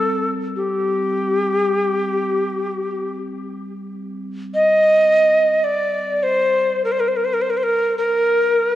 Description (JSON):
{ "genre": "world meditative, free-time meditation music", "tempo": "free time", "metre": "none", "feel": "none", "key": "G minor", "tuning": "A4 = 440 Hz", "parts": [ { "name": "breathy bright Native American-style cedar flute", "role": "melody", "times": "0.0-8.8 s", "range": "G4 to Eb5", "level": "-16 LUFS", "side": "equal", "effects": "ping-pong delay" }, { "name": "quartz singing bowl", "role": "texture", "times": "0.0-7.5 s", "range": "G3 to C4", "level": "-30 LUFS", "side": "equal", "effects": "none" } ], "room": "wet church reverb, RT60 2.5 s", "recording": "worn, warbling old tape, cassette tape, warbly pitch drift", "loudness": "-16 LUFS", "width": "side -13 dB against mid", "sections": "0.0-8.8 A section", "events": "none", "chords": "none", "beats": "free time" }